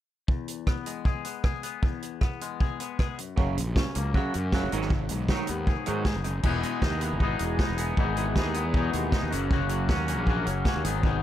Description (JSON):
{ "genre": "indie rock", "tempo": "156 BPM", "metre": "4/4", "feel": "straight", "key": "E lydian", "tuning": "A4 = 440 Hz", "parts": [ { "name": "twangy electric guitar", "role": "riff", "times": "0.3-11.2 s", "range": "E2 to G#4", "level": "-32 LUFS", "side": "left 9 dB", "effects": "wide subtle chorus" }, { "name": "vintage drum kit", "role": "drums", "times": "0.3-11.1 s", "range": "crash cymbal, hi-hat, kick drum, rim click, snare drum", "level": "-27 LUFS", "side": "equal", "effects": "none" }, { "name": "twangy electric guitar", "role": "riff", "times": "3.4-11.2 s", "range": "F#2 to D#4", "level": "-33 LUFS", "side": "right 6 dB", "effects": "lush chorus, dub echo" }, { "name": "fuzz fingered electric bass", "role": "bass", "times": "3.4-11.2 s", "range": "E1 to G#2", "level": "-30 LUFS", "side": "equal", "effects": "overdrive" } ], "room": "small room ambience", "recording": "echo-heavy mix", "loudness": "-25 LUFS", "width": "side -12 dB against mid", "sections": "0.3-6.5 A section; 6.5-11.2 B section", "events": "none", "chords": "0.3 E; 3.2 F#; 4.7 G#m7; 6.5 Emaj7; 9.3 F#" }